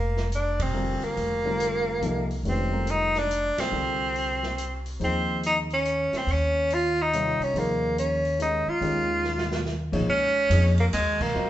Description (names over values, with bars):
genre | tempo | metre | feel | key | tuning
modal jazz | 141 BPM | 3/4 | swing 65% on 8ths | unclear | A4 = 441 Hz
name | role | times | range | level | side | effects
bright tenor saxophone | melody | 0.0-11.5 s | Ab3 to F4 | -25 LUFS | equal | none
upright bass | bass | 0.0-11.5 s | F1 to F2 | -29 LUFS | equal | none
open jazz drum kit | drums | 0.2-11.3 s | crash cymbal, hi-hat, kick drum, ride cymbal, snare drum | -36 LUFS | right 2 dB | none
warm concert grand piano | accompaniment | 0.7-11.5 s | C3 to Eb5 | -31 LUFS | left 2 dB | none
room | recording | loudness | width
wet large studio reverb, RT60 1.2 s | band playing live in one room, nothing above 8.0 kHz | -23 LUFS | side -13 dB against mid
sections
0.0-10.1 A section; 10.1-11.5 B section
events
band accent 0.5, 3.5, 11.1; drum fill 9.2-9.7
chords
0.0 Fsus4; 5.0 Eb13sus4; 10.1 Absus4